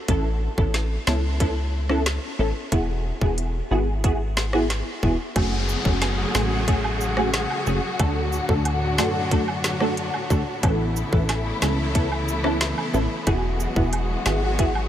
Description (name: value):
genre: dancehall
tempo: 91 BPM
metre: 4/4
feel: straight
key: F# minor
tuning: A4 = 440 Hz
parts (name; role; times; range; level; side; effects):
- wavetable chord stab; accompaniment; 0.1-14.7 s; A3 to A4; -26 LUFS; equal; ensemble chorus, sidechain pumping
- plucky analog bass; bass; 0.1-14.9 s; E1 to F#2; -25 LUFS; equal; none
- island pop drum kit; drums; 0.1-14.7 s; hi-hat, kick drum, rim click, snare drum; -26 LUFS; equal; none
- dark studio string section; sustained chords; 5.4-14.9 s; A2 to G#4; -27 LUFS; left 2 dB; sidechain pumping
- woodblock and cabasa; percussion; 5.4-14.9 s; none; -35 LUFS; right 5 dB; none
- downlifter; sound effects; 5.4-10.6 s; none; -32 LUFS; left 1 dB; none
room: moderate huge ambient reverb, RT60 7.6 s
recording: dreamy mix soaked in reverb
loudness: -20 LUFS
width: side -11 dB against mid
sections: 0.0-5.4 A section; 5.4-14.9 B section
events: none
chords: 0.1 Aadd9; 2.7 Eadd9; 5.4 F#madd9; 8.0 D; 10.6 Aadd9; 13.3 Eadd9